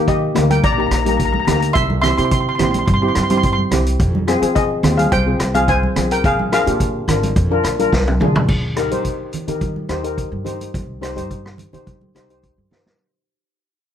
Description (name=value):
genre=calypso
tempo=107 BPM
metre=4/4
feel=straight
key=Eb major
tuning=A4 = 436 Hz
part: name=steel pan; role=accompaniment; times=0.0-13.0 s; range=Bb3 to C5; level=-21 LUFS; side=left 2 dB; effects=none
part: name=upright bass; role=bass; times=0.0-12.9 s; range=Ab1 to F3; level=-21 LUFS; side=equal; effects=none
part: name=steel pan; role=melody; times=0.1-7.0 s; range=G4 to C6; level=-19 LUFS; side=left 1 dB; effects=plate reverb
part: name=street-band drum kit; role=drums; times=0.1-13.0 s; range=crash cymbal, hi-hat, kick drum, rim click, snare drum, toms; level=-21 LUFS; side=equal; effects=none
part: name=congas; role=percussion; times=0.4-13.0 s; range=none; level=-24 LUFS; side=right 3 dB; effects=none
room=light reverb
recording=none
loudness=-15 LUFS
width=side -9 dB against mid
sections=0.0-8.5 A section; 8.5-13.0 B section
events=drum fill 7.8-8.5, 12.7; fade-out 8.5-13.0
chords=0.0 Ebmaj7; 1.8 C; 4.0 Fm; 6.2 Bb7; 8.5 Eb; 10.7 Cm